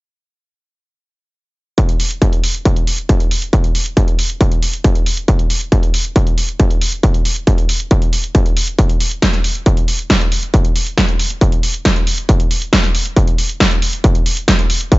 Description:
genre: trance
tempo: 137 BPM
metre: 4/4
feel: straight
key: none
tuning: none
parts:
  - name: electronic kick drum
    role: drums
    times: 1.8-15.0 s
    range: none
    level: -13 LUFS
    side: equal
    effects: distortion
  - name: punchy analog drum machine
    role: drums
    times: 1.8-15.0 s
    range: hi-hat, snare drum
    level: -18 LUFS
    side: right 1 dB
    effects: sidechain pumping on hats
room: little or no reverb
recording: nothing above 7.8 kHz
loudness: -13 LUFS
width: side -21 dB against mid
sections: 1.8-15.0 A section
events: none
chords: none

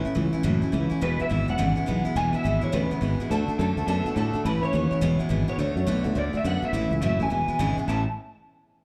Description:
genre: rockabilly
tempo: 210 BPM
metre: 4/4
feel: swing 63% on 8ths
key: A major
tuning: A4 = 437 Hz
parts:
  - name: picked steel-string acoustic guitar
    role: accompaniment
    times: 0.0-8.0 s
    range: E2 to F#4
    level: -31 LUFS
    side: equal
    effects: slapback echo
  - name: electric guitar through a small old amp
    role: riff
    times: 0.0-8.0 s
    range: E2 to E4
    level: -33 LUFS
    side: equal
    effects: none
  - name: sustaining fretless electric bass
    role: bass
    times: 0.1-8.0 s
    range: E1 to A2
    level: -29 LUFS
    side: equal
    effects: analog chorus
  - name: electric guitar through a small old amp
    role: melody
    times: 1.0-8.1 s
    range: A4 to A5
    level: -32 LUFS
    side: equal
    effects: analog chorus, plate reverb, slapback echo, tape echo
room: moderate club reverb, RT60 0.6 s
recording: live gig heard through the venue's PA, club reverb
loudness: -25 LUFS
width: mono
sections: 0.0-5.6 A section; 5.6-7.9 B section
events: none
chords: 0.0 A; 1.0 E; 3.3 D; 4.4 A; 5.0 E; 5.6 D; 6.7 A; 7.3 E; 7.9 A

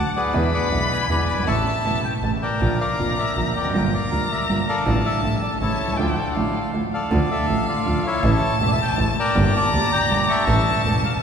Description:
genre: tango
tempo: 160 BPM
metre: 3/4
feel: rubato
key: D harmonic minor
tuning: A4 = 440 Hz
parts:
  - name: bandoneon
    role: melody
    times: 0.0-11.1 s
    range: E4 to D6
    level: -23 LUFS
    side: left 1 dB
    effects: none
  - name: warm violin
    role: second line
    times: 0.0-11.2 s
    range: F5 to B5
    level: -27 LUFS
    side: left 2 dB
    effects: none
  - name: warm grand piano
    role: accompaniment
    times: 0.0-11.0 s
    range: E1 to A4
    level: -24 LUFS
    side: right 2 dB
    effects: none
  - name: clear double bass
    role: bass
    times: 0.0-11.0 s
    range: E1 to E2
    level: -24 LUFS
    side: equal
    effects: none
room: wet cathedral reverb, RT60 4.5 s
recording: recorded in a church or concert hall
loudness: -18 LUFS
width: side -7 dB against mid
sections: 0.0-7.1 A section; 7.1-11.2 B section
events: none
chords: 0.3 E7; 1.5 A; 2.6 Bb; 3.7 Gm7; 4.9 Dm/A; 5.6 A; 6.0 Dmadd9; 8.2 A; 9.4 Gm; 10.5 A

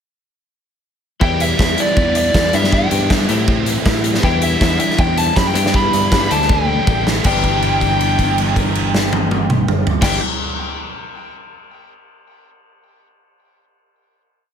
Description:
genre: indie rock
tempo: 160 BPM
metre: 4/4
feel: straight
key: G major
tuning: A4 = 440 Hz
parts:
  - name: nasal lead guitar with a parked wah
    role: melody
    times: 1.2-10.2 s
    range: D5 to B5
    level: -20 LUFS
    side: left 1 dB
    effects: overdrive, digital delay
  - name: biting overdriven guitar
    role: riff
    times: 1.2-10.2 s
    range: G2 to E4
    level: -23 LUFS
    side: right 9 dB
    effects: analog chorus
  - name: twelve-string electric guitar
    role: riff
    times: 1.2-10.2 s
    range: E3 to G4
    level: -24 LUFS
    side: left 10 dB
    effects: none
  - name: picked electric bass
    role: bass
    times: 1.2-10.2 s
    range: G1 to A2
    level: -20 LUFS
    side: equal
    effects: none
  - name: big rock drum kit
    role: drums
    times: 1.2-10.1 s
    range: crash cymbal, hi-hat, kick drum, snare drum, toms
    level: -18 LUFS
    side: equal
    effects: none
room: light reverb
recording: none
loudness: -13 LUFS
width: side -8 dB against mid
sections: 1.2-7.2 pre-chorus; 7.2-10.2 final chord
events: drum fill 6.5-7.2; held note 7.2-10.0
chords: 1.2 Em7; 2.5 G6; 3.3 Am7; 4.2 Em7; 5.6 G6; 6.3 Dsus4; 7.2 G6

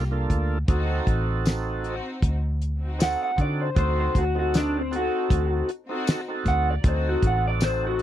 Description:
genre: straight-eighth soul blues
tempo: 78 BPM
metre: 4/4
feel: swing 55% on 16ths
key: unclear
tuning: A4 = 438 Hz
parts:
  - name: tonewheel organ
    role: accompaniment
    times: 0.0-8.0 s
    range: Bb3 to A4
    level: -30 LUFS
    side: right 5 dB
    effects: slow rotary speaker, overdrive
  - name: rich symphonic string section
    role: sustained chords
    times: 0.0-8.0 s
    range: Bb3 to A4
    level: -36 LUFS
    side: left 2 dB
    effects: none
  - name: vintage muted fingered electric bass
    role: bass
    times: 0.0-8.0 s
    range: A1 to D3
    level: -25 LUFS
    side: equal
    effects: none
  - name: damped 70s drum kit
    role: drums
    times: 0.3-8.0 s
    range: hi-hat, kick drum, snare drum, tambourine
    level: -23 LUFS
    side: equal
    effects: none
  - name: electric guitar through a small old amp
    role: melody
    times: 3.0-8.0 s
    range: C4 to F#5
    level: -26 LUFS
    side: left 1 dB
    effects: none
room: little or no reverb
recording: dry, close 1970s-style studio recording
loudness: -22 LUFS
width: side -12 dB against mid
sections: 0.0-8.0 A section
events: none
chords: 0.0 Gm7; 0.7 D7b9

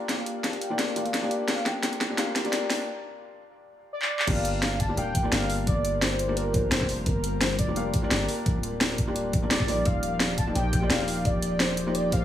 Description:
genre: liquid drum and bass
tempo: 172 BPM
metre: 4/4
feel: straight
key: G minor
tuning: A4 = 440 Hz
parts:
  - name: felt-muted upright piano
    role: accompaniment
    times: 0.0-12.2 s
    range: Bb3 to F5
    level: -31 LUFS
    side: left 1 dB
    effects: dub echo
  - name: airy breathy pad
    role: sustained chords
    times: 0.0-12.2 s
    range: F3 to F5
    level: -35 LUFS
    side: left 2 dB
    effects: chorus, sidechain pumping
  - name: warm velvety synth lead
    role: melody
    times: 0.1-12.2 s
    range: Bb4 to A5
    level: -32 LUFS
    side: equal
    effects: chorus, digital delay
  - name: drum and bass drum kit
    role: drums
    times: 0.1-12.2 s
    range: crash cymbal, handclaps, hi-hat, snare drum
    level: -28 LUFS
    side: equal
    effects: overdrive
  - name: long sustained 808-style bass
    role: bass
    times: 4.3-12.2 s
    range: D1 to Bb1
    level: -31 LUFS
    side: equal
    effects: none
  - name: electronic kick drum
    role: drums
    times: 4.3-12.2 s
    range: none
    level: -26 LUFS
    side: equal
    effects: overdrive
room: light reverb, digital ambience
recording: high-pass filter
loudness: -24 LUFS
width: side -11 dB against mid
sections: 0.0-4.3 A section; 4.3-12.2 B section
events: build-up 0.0-4.3; drum fill 0.0-2.9, 4.0; filter sweep on soft synth lead 0.0-4.3; filter sweep 0.0-4.3; break 2.9-4.3; drop 4.3-12.2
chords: 0.0 Gm7; 9.9 Ebmaj9

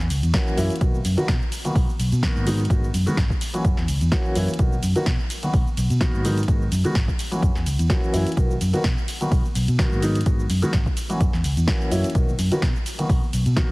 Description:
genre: filtered disco house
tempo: 127 BPM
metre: 4/4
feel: swing 54% on 16ths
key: B major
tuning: A4 = 440 Hz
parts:
  - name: vintage muted fingered electric bass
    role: bass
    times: 0.0-13.6 s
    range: G#1 to B2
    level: -23 LUFS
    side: equal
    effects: sidechain pumping
  - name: punchy analog drum machine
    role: drums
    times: 0.0-13.7 s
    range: hi-hat, ride cymbal, shaker, snare drum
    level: -30 LUFS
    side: equal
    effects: sidechain pumping on hats, sidechain pumping on perc, sidechain pumping on cymbals
  - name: dark grand piano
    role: accompaniment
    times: 0.3-13.7 s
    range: D#3 to F#4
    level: -26 LUFS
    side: equal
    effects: phaser, sidechain pumping
  - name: electronic kick drum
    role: drums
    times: 0.3-13.7 s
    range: none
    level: -22 LUFS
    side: equal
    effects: none
room: little or no reverb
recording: heavily compressed radio sound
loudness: -19 LUFS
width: side -24 dB against mid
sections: 0.0-13.7 A section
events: none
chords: 0.0 F#7; 0.8 Bmaj7; 2.5 G#m7; 3.6 F#7; 4.6 Bmaj7; 6.2 G#m7; 7.4 F#7; 8.4 Bmaj7; 10.0 G#m7; 11.2 F#7; 12.2 Bmaj7

